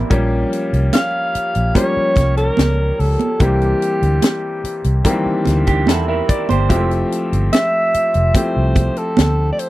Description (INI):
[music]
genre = lush 1970s-style soul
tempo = 73 BPM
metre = 4/4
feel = straight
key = unclear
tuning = A4 = 440 Hz
[part]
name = clear baby grand piano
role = accompaniment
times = 0.0-9.7 s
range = Eb3 to E5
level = -20 LUFS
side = left 2 dB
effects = none
[part]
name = electric guitar through a small old amp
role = riff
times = 0.0-0.1, 5.7-6.9 s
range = D4 to C5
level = -21 LUFS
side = right 8 dB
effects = tube saturation
[part]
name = vintage muted fingered electric bass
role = bass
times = 0.0-9.5 s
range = F1 to E2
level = -17 LUFS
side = equal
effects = none
[part]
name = tight funk drum kit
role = drums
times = 0.1-9.7 s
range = hi-hat, kick drum, snare drum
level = -16 LUFS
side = equal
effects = none
[part]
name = breathy alto saxophone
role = melody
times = 0.9-9.7 s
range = G4 to F5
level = -19 LUFS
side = equal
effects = tape echo
[part]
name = congas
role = percussion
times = 0.9-9.4 s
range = none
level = -22 LUFS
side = right 6 dB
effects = none
[sound]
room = little or no reverb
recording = dry, close 1970s-style studio recording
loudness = -14 LUFS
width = side -16 dB against mid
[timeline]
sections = 0.1-9.7 A section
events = none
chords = 0.1 Bbm6; 3.4 C7; 6.7 Fmaj9